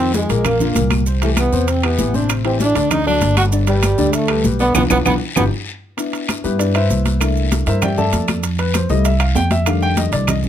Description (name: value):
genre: Afro-Cuban jazz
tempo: 195 BPM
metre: 4/4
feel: straight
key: C major from 6.0 s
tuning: A4 = 440 Hz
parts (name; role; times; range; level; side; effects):
- breathy trombone; melody; 0.0-5.4 s; G3 to F#4; -19 LUFS; equal; none
- clear tenor saxophone; second line; 0.0-5.4 s; G3 to F#4; -23 LUFS; right 6 dB; none
- warm baby grand piano; accompaniment; 0.0-10.5 s; Bb2 to A5; -21 LUFS; left 4 dB; none
- upright bass; bass; 0.0-10.5 s; G1 to G2; -18 LUFS; right 1 dB; none
- congas; percussion; 0.1-10.5 s; none; -24 LUFS; equal; none
- guiro; percussion; 0.1-10.5 s; none; -32 LUFS; left 6 dB; none
- maracas; percussion; 0.1-10.5 s; none; -30 LUFS; right 6 dB; none
- timbales; percussion; 0.3-10.4 s; none; -25 LUFS; right 9 dB; none
- claves; percussion; 0.5-10.4 s; none; -26 LUFS; equal; none
room: little or no reverb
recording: close, detailed microphones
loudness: -14 LUFS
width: side -10 dB against mid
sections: 0.0-6.0 A section; 6.0-10.5 B section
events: drum fill 4.8-6.0; band accent 4.8-6.0; grand piano solo 6.0-10.5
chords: 0.5 Bbadd9; 1.1 Cmaj7; 2.3 Am7; 2.9 D; 3.5 Gadd9; 4.8 Bdim; 5.4 G7(no3); 6.0 Cmaj9; 7.2 C13; 8.4 Fmaj9; 9.7 F13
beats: 0.14 0.45 0.76 | 1.06 1.37 1.68 1.99 | 2.29 2.60 2.91 3.22 | 3.52 3.83 4.14 4.45 | 4.75 5.06 5.37 5.67 | 5.98 6.29 6.59 6.90 | 7.21 7.52 7.82 8.13 | 8.44 8.74 9.05 9.36 | 9.66 9.97 10.28